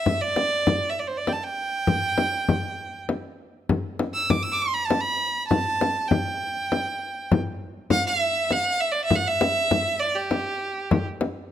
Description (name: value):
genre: Arabic maqam ensemble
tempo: 100 BPM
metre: 3/4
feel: straight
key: G maqam rast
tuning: A4 = 442 Hz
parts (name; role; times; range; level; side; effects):
- clear violin; melody; 0.0-11.1 s; G4 to E6; -24 LUFS; right 2 dB; none
- frame drum; percussion; 0.1-11.4 s; none; -24 LUFS; left 3 dB; none
room: moderate recital hall reverb, RT60 1.8 s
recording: close, detailed microphones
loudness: -22 LUFS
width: side -10 dB against mid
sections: 0.0-11.5 A section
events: none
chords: none